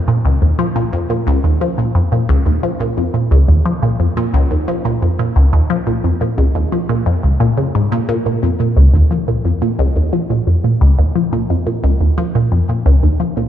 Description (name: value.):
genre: ambient.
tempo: 88 BPM.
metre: 4/4.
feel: straight.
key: Bb minor.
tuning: A4 = 440 Hz.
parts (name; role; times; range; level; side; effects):
resonant blip pluck; solo; 0.1-13.5 s; Db2 to F3; -12 LUFS; equal; phaser, ping-pong delay.
room: moderate plate reverb, RT60 2.9 s.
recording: dark, warm production.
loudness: -13 LUFS.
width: side -11 dB against mid.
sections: 0.0-8.3 A section; 8.3-13.5 B section.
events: none.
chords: none.